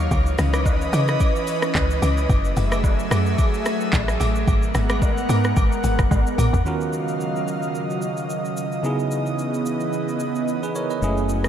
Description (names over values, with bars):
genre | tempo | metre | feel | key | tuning
amapiano | 110 BPM | 4/4 | swing 55% on 16ths | unclear | A4 = 441 Hz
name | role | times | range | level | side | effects
airy breathy pad | sustained chords | 0.0-11.5 s | Db3 to Gb5 | -24 LUFS | right 1 dB | chorus, sidechain pumping
woody log drum bass | bass | 0.0-6.6 s | Gb1 to Db3 | -21 LUFS | equal | none
afro-pop drum kit | drums | 0.1-11.5 s | handclaps, hi-hat, kick drum, rim click, shaker, toms | -23 LUFS | equal | none
agogo bells and woodblock | percussion | 0.1-6.5 s | none | -33 LUFS | equal | none
bell-like tine electric piano | accompaniment | 6.7-11.5 s | Db3 to Eb5 | -25 LUFS | right 3 dB | medium stereo tremolo
fingered electric bass | bass | 11.0-11.5 s | Gb1 | -23 LUFS | equal | none
room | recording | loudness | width
moderate huge ambient reverb, RT60 8.2 s | dreamy mix soaked in reverb | -19 LUFS | side -9 dB against mid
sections
0.0-6.7 A section; 6.7-11.5 B section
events
drop 0.0-6.7; drum fill 6.1-6.7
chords
0.1 Dbm9; 2.3 Gbm9; 4.5 Abm9; 6.7 Ebm9; 8.8 Dbm9